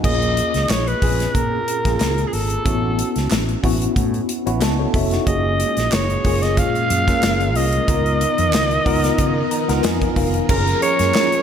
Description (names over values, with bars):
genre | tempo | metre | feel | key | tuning
polished 1980s jazz-funk pop | 92 BPM | 4/4 | swing 54% on 16ths | F# major | A4 = 440 Hz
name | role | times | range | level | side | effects
tine electric piano | accompaniment | 0.0-11.4 s | A#2 to A#5 | -22 LUFS | left 1 dB | overdrive, fast stereo tremolo, lush chorus, slapback echo
fretless electric bass | bass | 0.0-11.1 s | E#1 to C#3 | -22 LUFS | equal | lush chorus
modern studio drum kit | drums | 0.0-11.4 s | crash cymbal, hi-hat, kick drum, snare drum | -22 LUFS | equal | none
growling alto saxophone | melody | 0.1-11.4 s | G#4 to E#5 | -21 LUFS | right 1 dB | slapback echo
group handclap | percussion | 0.7-11.3 s | none | -34 LUFS | right 6 dB | none
string machine, full ensemble | sustained chords | 5.3-11.4 s | A#2 to A#4 | -28 LUFS | right 1 dB | phaser, ensemble chorus
room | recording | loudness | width
light reverb, studio ambience | none | -16 LUFS | side -8 dB against mid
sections
0.0-10.5 A section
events
tine electric piano fill 4.3-5.3, 9.2-10.5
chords
0.0 A#m7; 2.7 A6; 5.3 F#maj9; 7.9 C#13; 10.5 F#maj9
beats
| 0.04 0.69 1.35 2.00 | 2.65 3.31 3.96 4.62 | 5.27 5.92 6.57 7.23 | 7.88 8.53 9.19 9.84 | 10.49 11.14